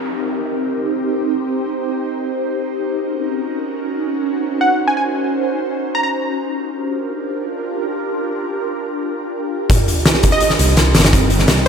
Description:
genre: drum and bass, jungle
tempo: free time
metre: none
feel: none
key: C minor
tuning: A4 = 440 Hz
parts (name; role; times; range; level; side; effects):
- ethereal airy pad; sustained chords; 0.0-11.7 s; C4 to C5; -20 LUFS; right 1 dB; ensemble chorus, built-in reverb, phaser, vintage 12-bit sampler grit
- downlifter and sub drop; sound effects; 0.0-1.1, 9.7-11.1 s; none; -27 LUFS; equal; none
- plucky unison lead; melody; 4.6-6.1, 10.3-11.7 s; Eb5 to Bb5; -20 LUFS; equal; dub echo
- oversized low-tuned drum kit; drums; 9.7-11.7 s; hi-hat, kick drum, snare drum; -13 LUFS; equal; none
- detuned saw bass; bass; 10.6-11.7 s; G1 to C2; -16 LUFS; equal; none
room: moderate lush hall reverb, RT60 1.9 s, studio reverb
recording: none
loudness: -16 LUFS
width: side -6 dB against mid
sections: 0.0-9.7 A section; 9.7-11.7 B section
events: drop 9.7-11.7; impact 9.7-11.1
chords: 0.0 Cm7; 2.6 Ebm7; 6.1 Gm7; 9.7 Cm7

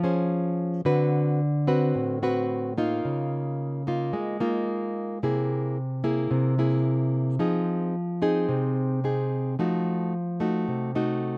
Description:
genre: bossa nova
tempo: 110 BPM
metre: 4/4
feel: straight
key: unclear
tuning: A4 = 441 Hz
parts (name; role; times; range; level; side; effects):
- nylon-string guitar; solo; 0.0-11.4 s; A2 to C5; -23 LUFS; equal; none
room: light reverb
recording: recorded outdoors, with no room sound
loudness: -23 LUFS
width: side -29 dB against mid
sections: 0.0-11.4 A section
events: none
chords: 0.0 Bbm9 (rootless); 0.9 D6; 3.0 Db69; 5.2 Caug7; 7.4 Fm7; 9.6 F7b9

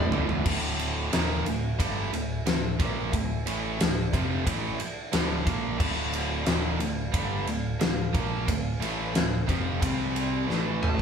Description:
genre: hard rock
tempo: 90 BPM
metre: 4/4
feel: straight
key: D minor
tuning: A4 = 442 Hz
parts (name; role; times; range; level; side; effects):
- bluesy overdriven lead guitar; melody; 0.0-0.1, 10.8-11.0 s; A5; -34 LUFS; left 3 dB; distortion
- dark analog pad; sustained chords; 0.0-11.0 s; A3 to F5; -42 LUFS; right 3 dB; chorus
- distorted electric guitar; riff; 0.0-11.0 s; D2 to C4; -32 LUFS; left 5 dB; distortion
- tight distorted guitar; riff; 0.0-11.0 s; D2 to C4; -32 LUFS; right 8 dB; distortion
- picked electric bass; bass; 0.0-11.0 s; D1 to C2; -34 LUFS; equal; none
- big rock drum kit; drums; 0.1-11.0 s; crash cymbal, kick drum, ride cymbal, snare drum, toms; -28 LUFS; equal; none
room: moderate studio reverb, RT60 0.6 s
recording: band playing live in one room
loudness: -25 LUFS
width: side -7 dB against mid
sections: 0.4-11.0 A section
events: drum fill 0.0-0.4, 10.5-11.0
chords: 0.4 Dm; 9.8 C5; 10.5 A5

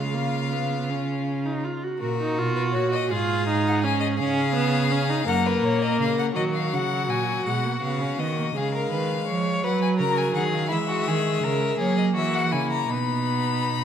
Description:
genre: classical, baroque-style fugue for string quartet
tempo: 55 BPM (dotted quarters)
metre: 6/8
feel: straight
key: F# major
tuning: A4 = 440 Hz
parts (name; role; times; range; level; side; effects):
- clear violin; melody; 0.0-13.8 s; A#4 to B5; -29 LUFS; left 9 dB; none
- rich violin; second line; 0.0-13.8 s; D#4 to C#5; -28 LUFS; left 2 dB; none
- rich viola; accompaniment; 0.0-13.8 s; F#3 to F#4; -27 LUFS; right 1 dB; none
- warm cello; bass; 0.0-13.8 s; F#2 to F#3; -26 LUFS; right 4 dB; none
room: wet concert hall reverb, RT60 2.2 s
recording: none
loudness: -22 LUFS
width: side -8 dB against mid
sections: 0.0-2.0 A section; 2.0-6.4 B section; 6.4-13.8 A section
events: none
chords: 0.0 C#; 2.0 F#/A#; 3.1 D#9sus4/G#; 4.2 C#7; 5.3 F#; 6.4 D#m7; 7.5 G#m/B; 8.5 C#7; 9.6 F#; 10.7 C#m; 12.9 B

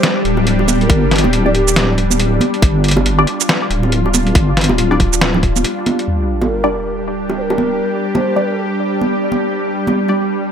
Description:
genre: deep dubstep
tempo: 139 BPM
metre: 4/4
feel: swing 60% on 16ths, half-time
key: G minor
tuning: A4 = 440 Hz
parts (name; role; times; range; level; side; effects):
- breathy mellow low ney; melody; 0.0-2.0, 6.4-8.6 s; G4 to C5; -23 LUFS; equal; dub echo
- bowed-like drone; sustained chords; 0.0-10.5 s; G3 to G4; -18 LUFS; equal; built-in reverb, vintage 12-bit sampler grit
- trip hop sampler-style drum kit; drums; 0.0-6.1 s; hi-hat, shaker, snare drum; -17 LUFS; right 1 dB; overdrive, low-pass filter on hats, low-pass filter on perc, low-pass filter on snare
- deep soft wobble bass; bass; 0.2-5.6 s; D1 to G1; -16 LUFS; equal; chorus
- bongos and congas; percussion; 0.4-10.2 s; none; -20 LUFS; right 2 dB; dub echo
- electronic kick drum; drums; 0.9-5.5 s; none; -13 LUFS; equal; overdrive
- filtered dub chord stab; stabs; 1.5-10.1 s; G3 to D5; -20 LUFS; left 2 dB; phaser, dub echo
- sub drop; sound effects; 6.1-7.8 s; none; -23 LUFS; equal; none
room: light reverb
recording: none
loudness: -13 LUFS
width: side -8 dB against mid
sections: 0.0-6.1 A section; 6.1-10.5 B section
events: break 5.6-6.1; impact 6.1-7.8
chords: 0.0 G5

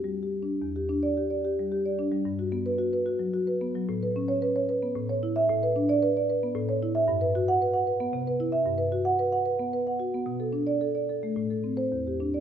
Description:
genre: classical, contemporary piece for solo marimba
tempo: 112 BPM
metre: 3/4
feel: rubato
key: E minor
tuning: A4 = 440 Hz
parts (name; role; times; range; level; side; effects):
- marimba with soft mallets; solo; 0.0-12.4 s; E2 to F#5; -25 LUFS; right 1 dB; none
room: moderate concert hall reverb, RT60 1.9 s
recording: none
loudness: -25 LUFS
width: side -9 dB against mid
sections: 0.6-12.4 A section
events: none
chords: 0.0 Em7; 2.3 Gmaj7; 3.9 Aadd9; 5.0 A; 5.5 Bm7/A; 6.5 A; 7.1 Gmaj7; 8.1 Cmaj7; 8.7 Gmaj7; 10.3 Bm7; 11.4 Am

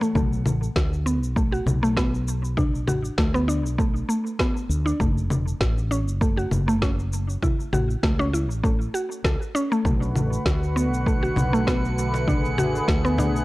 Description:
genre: organic downtempo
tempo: 99 BPM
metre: 4/4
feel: swing 54% on 16ths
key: B dorian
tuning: A4 = 444 Hz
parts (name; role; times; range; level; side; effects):
- warm analog pad; sustained chords; 0.0-0.1, 9.8-13.4 s; D3 to C#5; -28 LUFS; equal; chorus, sidechain pumping
- mallet-like synth pluck; arpeggios; 0.0-13.3 s; A3 to A4; -26 LUFS; equal; chorus, analog delay
- electronic shaker, congas and snare drum; drums; 0.0-13.4 s; none; -27 LUFS; left 1 dB; none
- cajon; percussion; 0.0-0.1, 10.0-13.3 s; none; -31 LUFS; left 1 dB; none
- drifting glass-harmonics texture; texture; 0.0-0.2, 10.3-13.4 s; F#5; -36 LUFS; right 2 dB; chorus, built-in reverb
- mellow fretless electric bass; bass; 0.2-13.4 s; E1 to D2; -25 LUFS; equal; tube saturation
- electronic kick drum; drums; 0.2-13.0 s; none; -24 LUFS; equal; none
room: light reverb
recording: dry, gritty hardware recording, transformer saturation, cassette tape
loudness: -21 LUFS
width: side -19 dB against mid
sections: 0.2-13.4 A section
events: none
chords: 0.2 Bm7; 5.0 F#m; 7.4 A6; 9.8 Bm7

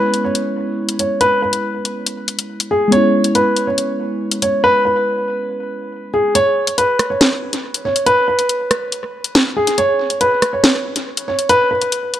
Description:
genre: hip hop, drill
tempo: 140 BPM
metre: 4/4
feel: half-time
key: C# minor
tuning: A4 = 438 Hz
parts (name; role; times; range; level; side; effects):
- dark grand piano; melody; 0.0-12.2 s; G#4 to C#5; -16 LUFS; equal; tape echo
- muted felt-like synth keys; accompaniment; 0.0-6.4 s; G#3 to E4; -21 LUFS; equal; chorus
- drill drum kit; drums; 0.1-12.2 s; hi-hat, rim click, snare drum; -16 LUFS; left 1 dB; tape echo
room: light reverb, digital ambience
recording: echo-heavy mix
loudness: -14 LUFS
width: side -11 dB against mid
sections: 0.0-6.4 A section; 6.4-12.2 B section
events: kick muted 6.4-12.2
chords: 0.0 C#m7; 6.4 N.C.

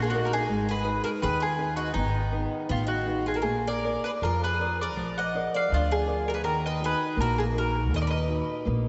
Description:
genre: fado-style ballad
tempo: 82 BPM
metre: 2/4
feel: rubato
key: Eb harmonic minor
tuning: A4 = 440 Hz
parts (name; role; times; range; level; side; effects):
- mandolin; melody; 0.0-8.7 s; Eb4 to Gb5; -31 LUFS; equal; analog delay
- picked twelve-string acoustic guitar; second line; 0.0-8.6 s; Cb4 to Eb5; -37 LUFS; equal; analog chorus
- nylon-string guitar; accompaniment; 0.0-8.9 s; Bb2 to D5; -35 LUFS; equal; none
- upright bass; bass; 0.0-8.9 s; Ab1 to F2; -32 LUFS; equal; none
room: wet lush hall reverb, RT60 2.9 s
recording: dreamy mix soaked in reverb, nothing above 7.9 kHz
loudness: -27 LUFS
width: mono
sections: 0.0-8.9 A section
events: none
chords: 0.0 Ebm; 0.5 Abm; 3.5 Bb7; 6.5 Ebm

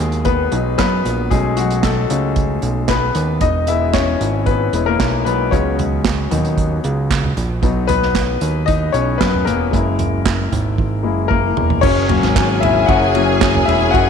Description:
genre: piano-driven pop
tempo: 114 BPM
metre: 4/4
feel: straight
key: B major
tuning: A4 = 440 Hz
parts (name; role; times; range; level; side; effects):
- clear concert grand piano; accompaniment; 0.0-14.1 s; F#3 to F#5; -18 LUFS; left 8 dB; none
- fat analog bass; bass; 0.0-14.1 s; E1 to F#2; -19 LUFS; right 2 dB; tube saturation
- unplugged drum kit; drums; 0.1-14.1 s; crash cymbal, handclaps, hi-hat, kick drum, ride cymbal, snare drum, toms; -20 LUFS; right 4 dB; none
- clear studio violin section; second line; 11.8-14.1 s; G#4 to G#5; -20 LUFS; right 1 dB; none
- percussive tonewheel organ; sustained chords; 11.8-14.1 s; F#3 to A#4; -23 LUFS; right 2 dB; overdrive, chorus vibrato, slow rotary speaker
room: moderate echo chamber reverb, RT60 2.0 s, small room ambience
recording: 1960s-style stereo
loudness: -14 LUFS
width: side -7 dB against mid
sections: 0.0-11.8 A section; 11.8-14.1 B section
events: grand piano solo 0.0-11.8, 11.8-14.1; drum fill 10.8-11.8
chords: 0.0 B; 1.3 B7; 3.4 E; 5.5 C#7sus4; 7.6 B; 9.7 F#7; 11.8 F#

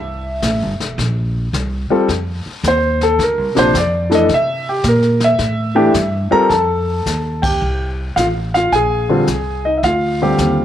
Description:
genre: jazz piano trio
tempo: 109 BPM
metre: 4/4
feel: swing 67% on 8ths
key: unclear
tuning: A4 = 442 Hz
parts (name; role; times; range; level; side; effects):
- warm grand piano; melody; 0.0-10.6 s; C3 to Bb5; -15 LUFS; left 1 dB; slapback echo
- upright bass; bass; 0.0-10.6 s; E1 to C3; -20 LUFS; right 1 dB; none
- jazz brush drum kit; drums; 0.4-10.6 s; brushed snare drum, crash cymbal, hi-hat, kick drum, snare drum; -25 LUFS; left 4 dB; none
room: little or no reverb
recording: 1960s-style stereo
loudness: -14 LUFS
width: side -10 dB against mid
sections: 0.0-6.5 A section; 6.5-10.6 B section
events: grand piano solo 0.0-6.5; band accent 7.3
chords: 0.0 C7; 2.1 F7(no3); 3.2 Dm7; 4.3 C7; 6.5 F9; 8.7 Bb9

